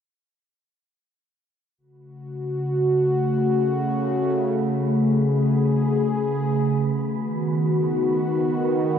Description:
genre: ambient, sequencer-driven space music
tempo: free time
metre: none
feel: none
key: F# dorian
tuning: A4 = 439 Hz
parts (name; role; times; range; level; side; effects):
- sweeping resonant pad; sustained chords; 1.8-9.0 s; C#3 to G#4; -20 LUFS; equal; chorus
- wind-like tuned noise texture; texture; 3.0-9.0 s; B4; -41 LUFS; right 4 dB; built-in reverb
room: wet huge ambient reverb, RT60 8.6 s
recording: cassette tape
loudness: -20 LUFS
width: side -8 dB against mid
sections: 1.8-9.0 A section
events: fade-in on synth texture 1.8-9.0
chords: 1.8 F#m; 6.9 B

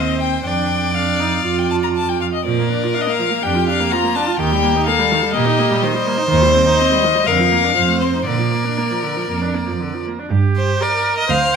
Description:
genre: quick classical-period movement for string quartet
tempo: 123 BPM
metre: 4/4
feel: straight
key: Bb major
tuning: A4 = 444 Hz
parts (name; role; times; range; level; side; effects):
- rich violin; melody; 0.0-11.2 s; Bb4 to Bb5; -19 LUFS; left 8 dB; none
- clear violin; second line; 0.0-11.6 s; F4 to F5; -21 LUFS; left 1 dB; none
- rich viola; accompaniment; 0.0-11.6 s; D3 to C5; -21 LUFS; right 4 dB; none
- rich cello; bass; 0.0-11.6 s; D2 to Bb2; -21 LUFS; right 4 dB; none
room: moderate recital hall reverb, RT60 1.5 s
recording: minimal, uncompressed stereo recording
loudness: -15 LUFS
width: side -6 dB against mid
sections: 0.0-10.3 A section; 10.3-11.6 B section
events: none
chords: 0.5 Ebmaj9/F; 1.5 Fsus2; 2.5 Bb; 4.4 Eb; 6.3 Cm/Eb; 7.3 Bb/F; 7.8 F7; 8.3 Bb; 10.3 Gm

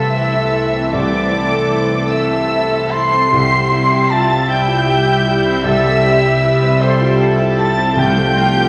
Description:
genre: cinematic, emotional film score for orchestra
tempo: 51 BPM (dotted quarters)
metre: 6/8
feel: rubato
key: C major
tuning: A4 = 441 Hz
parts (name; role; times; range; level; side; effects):
- dark studio violin section; melody; 0.0-8.7 s; C6 to C7; -24 LUFS; equal; none
- mellow hollow concert flute; second line; 0.0-8.7 s; C5 to C6; -21 LUFS; equal; none
- rich studio violin section; second line; 0.0-8.7 s; G3 to G5; -29 LUFS; equal; none
- dark studio viola section; accompaniment; 0.0-8.7 s; E3 to E5; -25 LUFS; equal; none
- felt-muted upright piano; accompaniment; 0.0-8.7 s; C2 to E5; -23 LUFS; equal; none
- dark French horn section; sustained chords; 0.0-8.7 s; E3 to G4; -26 LUFS; equal; none
- concert harp; arpeggios; 0.0-8.7 s; C3 to A5; -23 LUFS; equal; none
- dark studio double bass section; bass; 0.0-8.7 s; C2; -26 LUFS; equal; none
- warm studio cello section; bass; 0.0-8.7 s; E4 to B4; -25 LUFS; equal; none
- timpani; percussion; 8.0-8.7 s; C3; -24 LUFS; equal; none
room: wet scoring stage reverb, RT60 1.8 s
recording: vinyl crackle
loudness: -15 LUFS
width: mono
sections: 0.0-8.7 A section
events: none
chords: 0.0 Am/C; 3.3 C; 8.0 Fadd9/C

